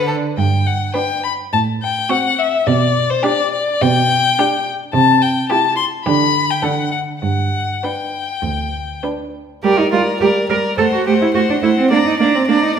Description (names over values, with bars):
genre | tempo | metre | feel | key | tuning
quick classical-period movement for string quartet | 105 BPM | 4/4 | rubato | G major, G minor from 9.6 s | A4 = 442 Hz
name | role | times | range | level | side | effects
warm violin | melody | 0.0-12.8 s | C5 to C6 | -18 LUFS | left 6 dB | none
rich violin | second line | 0.0-12.8 s | F#4 to D5 | -22 LUFS | left 2 dB | none
clear viola | accompaniment | 0.0-12.6 s | G3 to E4 | -22 LUFS | right 5 dB | none
rich cello | bass | 0.0-12.8 s | D2 to Bb4 | -17 LUFS | right 4 dB | none
room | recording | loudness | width
wet recital hall reverb, RT60 1.6 s | minimal, uncompressed stereo recording | -14 LUFS | side -7 dB against mid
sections
0.0-9.6 A section; 9.6-12.8 B section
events
none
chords
0.4 G; 1.5 F#dim/A; 2.7 G/B; 4.9 C6; 6.1 G/D; 7.2 G; 9.6 Gm; 10.8 F#dim/A; 11.9 Gm (rootless)